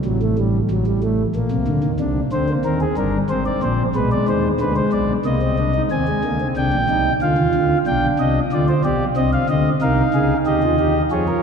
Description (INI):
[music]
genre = classical, baroque-style 4-part fugue for pipe organ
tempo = 92 BPM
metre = 3/4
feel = straight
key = C minor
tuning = A4 = 440 Hz
[part]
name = chamber organ, principal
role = solo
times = 0.1-11.4 s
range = G1 to Ab5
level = -16 LUFS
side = equal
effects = none
[sound]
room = wet cathedral reverb, RT60 4.3 s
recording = minimal, uncompressed stereo recording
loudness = -16 LUFS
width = side -6 dB against mid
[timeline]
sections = 0.0-5.9 A section; 5.9-11.4 B section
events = none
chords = 0.1 F#m/A; 1.4 Bbadd9; 2.0 Cm; 3.3 Abadd9; 4.0 Bm6; 5.3 Cm; 5.9 Ab; 7.2 Dm; 7.9 G7/B; 9.2 Cm; 9.8 Ab/C